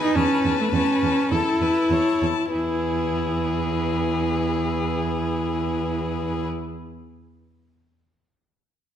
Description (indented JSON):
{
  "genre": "quick classical-period movement for string quartet",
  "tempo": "98 BPM",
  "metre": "4/4",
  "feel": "straight",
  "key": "E major",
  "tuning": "A4 = 440 Hz",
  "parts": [
    { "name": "rich violin", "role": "melody", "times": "0.0-6.5 s", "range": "B4 to A5", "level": "-30 LUFS", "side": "left 9 dB", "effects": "none" },
    { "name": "rich violin", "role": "second line", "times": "0.0-6.5 s", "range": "G#4 to C#5", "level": "-30 LUFS", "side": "left 4 dB", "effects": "none" },
    { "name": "rich viola", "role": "accompaniment", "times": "0.0-6.5 s", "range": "A3 to E4", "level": "-23 LUFS", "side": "equal", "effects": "none" },
    { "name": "warm cello", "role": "bass", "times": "0.2-6.5 s", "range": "E2", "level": "-27 LUFS", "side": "right 4 dB", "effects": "none" }
  ],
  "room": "wet recital hall reverb, RT60 1.4 s",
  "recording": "none",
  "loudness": "-21 LUFS",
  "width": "side -9 dB against mid",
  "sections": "0.0-2.5 A section; 2.5-7.5 B section",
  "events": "slowing down 0.0-2.5",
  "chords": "0.2 A/E; 2.5 E"
}